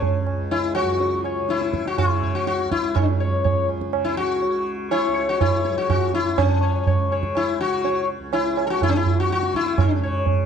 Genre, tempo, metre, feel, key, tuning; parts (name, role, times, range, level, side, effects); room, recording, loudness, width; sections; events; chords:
indian classical, Hindustani; 123 BPM; 7/4; straight; A4 = 440 Hz
sitar; melody; 0.0-10.5 s; C#4 to C#5; -22 LUFS; left 5 dB
tanpura; drone; 0.0-10.5 s; C#2 to C#3; -30 LUFS; equal
tabla; percussion; 0.0-10.4 s; -22 LUFS; right 5 dB
moderate recital hall reverb, RT60 1.5 s; dark, warm production; -19 LUFS; side -7 dB against mid
0.0-6.4 A section; 6.4-10.5 B section